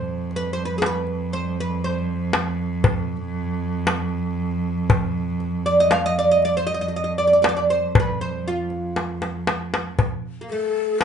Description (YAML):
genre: Turkish makam ensemble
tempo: 118 BPM (eighths)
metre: 10/8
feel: straight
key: F makam nikriz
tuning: A4 = 440 Hz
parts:
  - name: oud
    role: melody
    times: 0.0-11.0 s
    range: A3 to F5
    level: -21 LUFS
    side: right 2 dB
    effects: none
  - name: rich cello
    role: drone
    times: 0.0-10.1 s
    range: F2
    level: -26 LUFS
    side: right 2 dB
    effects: none
  - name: darbuka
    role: percussion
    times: 0.3-11.0 s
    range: none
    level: -21 LUFS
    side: left 2 dB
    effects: none
  - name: breathy mellow ney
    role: second line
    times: 10.5-11.0 s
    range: A4-23c to Bb4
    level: -22 LUFS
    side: left 6 dB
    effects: none
room: wet studio reverb, RT60 0.6 s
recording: heard from further back in the room, nothing above 10.8 kHz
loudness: -20 LUFS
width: side -7 dB against mid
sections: 0.0-10.0 A section; 10.0-11.0 B section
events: drum fill 9.0-10.0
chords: none